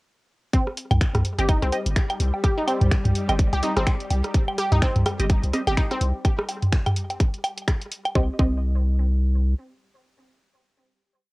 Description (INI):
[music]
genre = minimal techno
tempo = 126 BPM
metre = 4/4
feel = swing 58% on 16ths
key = C minor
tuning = A4 = 440 Hz
[part]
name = resonant blip pluck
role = riff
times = 0.5-8.5 s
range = C4 to G4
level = -29 LUFS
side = equal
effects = chorus, phaser, cassette tape, sidechain pumping, tape echo
[part]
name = electronic kick drum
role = drums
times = 0.5-8.5 s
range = none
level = -21 LUFS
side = equal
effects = cassette tape
[part]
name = garage drum kit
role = drums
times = 0.5-8.1 s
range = finger snaps, hi-hat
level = -32 LUFS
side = equal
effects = cassette tape
[part]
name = booming analog drum machine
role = percussion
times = 0.5-8.1 s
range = claves, rim click, toms, woodblock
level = -25 LUFS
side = equal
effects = cassette tape
[part]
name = swarming drone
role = texture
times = 1.3-6.3 s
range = G3 to G4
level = -34 LUFS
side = left 2 dB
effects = built-in reverb, sidechain pumping, cassette tape
[part]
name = punchy sub bass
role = bass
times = 0.9-9.5 s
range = G1 to C2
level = -22 LUFS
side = equal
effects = sidechain pumping
[part]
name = filtered dub chord stab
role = stabs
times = 1.4-11.3 s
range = C4 to Eb5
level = -31 LUFS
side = right 1 dB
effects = phaser, wide subtle chorus, cassette tape, analog delay
[sound]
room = light reverb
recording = home recording on cassette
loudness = -20 LUFS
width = side -23 dB against mid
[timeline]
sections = 0.5-8.2 drop; 8.2-11.3 final chord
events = drop 0.5-8.2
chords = 0.5 C5; 8.2 Cm